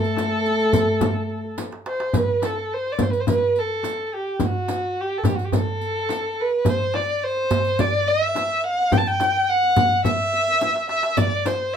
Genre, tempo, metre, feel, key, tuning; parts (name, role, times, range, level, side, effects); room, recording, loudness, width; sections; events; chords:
Turkish makam ensemble; 106 BPM; 4/4; straight; A makam huseyni; A4 = 440 Hz
dark violin; melody; 0.0-11.8 s; F#4-26c to A5; -21 LUFS; equal
growling trombone; second line; 0.0-1.6 s; A3; -24 LUFS; left 2 dB
darbuka; percussion; 0.0-11.8 s; -27 LUFS; right 4 dB
riq; percussion; 0.0-11.6 s; -30 LUFS; right 6 dB
frame drum; percussion; 0.2-11.6 s; -25 LUFS; left 7 dB
moderate studio reverb, RT60 0.5 s; -19 LUFS; side -8 dB against mid
0.0-2.1 A section; 2.1-11.8 B section
drum fill 1.6-2.1, 10.6-11.2